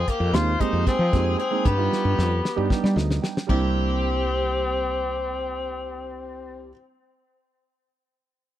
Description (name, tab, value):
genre	electric jazz fusion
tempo	229 BPM (eighths)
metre	7/8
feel	straight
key	unclear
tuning	A4 = 438 Hz
part	warm tenor saxophone	melody	0.0-6.7 s	Bb3 to F4	-27 LUFS	left 3 dB	none
part	biting overdriven guitar	second line	0.0-6.7 s	G4 to C5	-32 LUFS	equal	none
part	woody fretless electric bass	bass	0.0-6.7 s	C2 to G3	-24 LUFS	equal	none
part	damped 70s drum kit	drums	0.1-3.6 s	crash cymbal, hi-hat, kick drum, snare drum	-25 LUFS	equal	none
part	warm grand piano	accompaniment	0.3-6.7 s	G3 to G5	-28 LUFS	right 9 dB	none
room	light reverb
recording	dry, close 1970s-style studio recording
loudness	-21 LUFS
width	side -12 dB against mid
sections	0.0-3.5 A section; 3.5-7.2 B section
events	drum fill 1.9-3.5; grand piano fill 2.7-3.5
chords	0.0 Fm11; 1.6 G7b13; 3.5 C7